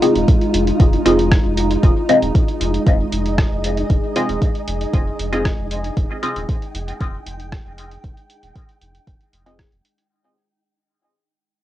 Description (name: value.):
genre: dub techno.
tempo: 116 BPM.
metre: 4/4.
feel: straight.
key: F minor.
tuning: A4 = 437 Hz.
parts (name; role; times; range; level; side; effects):
deep dark ambient pad; sustained chords; 0.0-10.1 s; Ab3 to Ab4; -24 LUFS; equal; chorus, built-in reverb, sidechain pumping.
filtered dub chord stab; stabs; 0.0-9.6 s; C4 to Eb5; -18 LUFS; left 1 dB; phaser, sidechain pumping, dub echo.
lo-fi sampler-style drum kit; drums; 0.0-10.1 s; hi-hat, rim click; -28 LUFS; right 1 dB; overdrive, cassette tape.
flickering grainy texture; texture; 0.0-10.1 s; Eb4 to G5; -28 LUFS; equal; built-in reverb, sidechain pumping.
warm sub bass; bass; 0.2-9.8 s; Eb1 to F1; -24 LUFS; equal; tube saturation, sidechain pumping.
electronic kick drum; drums; 0.3-9.7 s; none; -16 LUFS; equal; cassette tape.
room: light reverb.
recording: home recording on cassette.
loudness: -15 LUFS.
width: side -13 dB against mid.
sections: 0.0-10.1 A section.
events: fade-out 1.8-10.1.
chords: 0.0 Fm7.